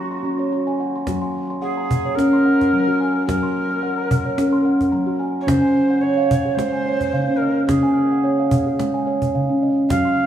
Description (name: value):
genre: world meditative, meditative tuned percussion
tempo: 109 BPM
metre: 4/4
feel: swing 53% on 16ths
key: Gb lydian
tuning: A4 = 440 Hz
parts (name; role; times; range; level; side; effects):
- mellow Native American-style cedar flute; melody; 0.0-10.3 s; Gb4 to F5; -25 LUFS; right 2 dB; tape echo
- steel tongue drum; arpeggios; 0.0-10.3 s; Db3 to C6; -18 LUFS; equal; tape echo
- cajon; percussion; 1.1-10.3 s; none; -25 LUFS; right 1 dB; none
room: wet echo chamber reverb, RT60 1.8 s, small room ambience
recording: none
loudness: -17 LUFS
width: side -10 dB against mid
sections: 0.0-1.1 A section; 1.1-10.3 B section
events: none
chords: 0.0 Gb; 5.5 Db